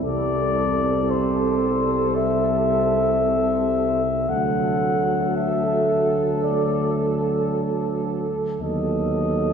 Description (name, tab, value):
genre	classical, hymn-like piece for brass band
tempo	56 BPM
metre	4/4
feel	rubato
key	unclear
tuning	A4 = 438 Hz
part	mellow flugelhorn	melody	0.0-9.5 s	C5 to F#5	-24 LUFS	left 3 dB	none
part	warm French horn section	second line	0.0-9.5 s	A4	-26 LUFS	right 7 dB	none
part	dark trombone	accompaniment	0.0-9.5 s	F#3 to G3	-28 LUFS	right 2 dB	none
part	mellow euphonium	accompaniment	0.0-9.5 s	A3 to C4	-28 LUFS	left 2 dB	none
part	mellow tuba	bass	0.0-9.5 s	C2 to D#2	-26 LUFS	left 1 dB	none
room	wet cathedral reverb, RT60 6.3 s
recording	heard from further back in the room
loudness	-19 LUFS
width	side -7 dB against mid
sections	0.0-9.5 A section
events	none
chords	0.0 Am7/C; 4.3 D; 8.6 B7/D#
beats	| 0.04 1.10 2.15 3.23 | 4.30 5.36 6.43 7.50 | 8.60